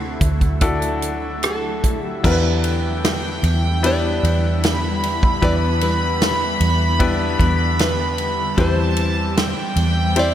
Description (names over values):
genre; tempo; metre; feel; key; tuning
pop ballad; 76 BPM; 4/4; straight; E minor; A4 = 440 Hz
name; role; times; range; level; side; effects
nylon-string guitar; melody; 0.0-10.3 s; A4 to E5; -26 LUFS; right 1 dB; none
clear grand piano; accompaniment; 0.0-10.3 s; D3 to C5; -24 LUFS; left 4 dB; slapback echo
shimmering ambient pad; sustained chords; 0.0-10.3 s; D3 to G4; -28 LUFS; equal; chorus, built-in reverb, phaser
vintage muted fingered electric bass; bass; 0.0-10.3 s; D2 to E2; -21 LUFS; right 1 dB; none
natural country drum kit; drums; 0.2-10.3 s; crash cymbal, hi-hat, kick drum, ride cymbal, rim click, snare drum; -22 LUFS; right 1 dB; none
warm studio violin section; second line; 2.2-10.3 s; G5 to B5; -24 LUFS; right 1 dB; slapback echo
room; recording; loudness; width
moderate concert hall reverb, RT60 2.4 s; big arena sound; -16 LUFS; side -11 dB against mid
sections
0.0-2.2 A section; 2.2-10.3 B section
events
none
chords
0.0 Dadd9; 2.2 Em7; 8.6 C/E